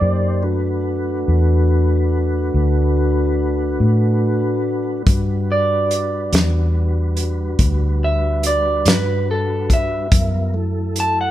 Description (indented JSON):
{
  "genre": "slow blues",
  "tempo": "48 BPM (dotted quarters)",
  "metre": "12/8",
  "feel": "straight",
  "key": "B minor",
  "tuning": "A4 = 440 Hz",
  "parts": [
    { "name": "electric guitar through a small old amp", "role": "melody", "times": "0.0-11.3 s", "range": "A4 to A5", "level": "-20 LUFS", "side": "right 2 dB", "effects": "none" },
    { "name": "mellow tonewheel organ", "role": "sustained chords", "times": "0.0-11.3 s", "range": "F#3 to C5", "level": "-22 LUFS", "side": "left 1 dB", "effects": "slow rotary speaker, chorus vibrato" },
    { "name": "vintage muted fingered electric bass", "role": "bass", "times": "0.0-11.3 s", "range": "D2 to A2", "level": "-18 LUFS", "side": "equal", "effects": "none" },
    { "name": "warm soul drum kit", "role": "drums", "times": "5.1-11.2 s", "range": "hi-hat, kick drum, snare drum", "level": "-17 LUFS", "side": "equal", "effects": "none" }
  ],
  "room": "light reverb",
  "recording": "band playing live in one room",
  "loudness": "-16 LUFS",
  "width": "side -13 dB against mid",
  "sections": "0.0-11.3 A section",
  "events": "none",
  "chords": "0.0 Bm7; 5.1 Gmaj7; 10.1 F#7#9"
}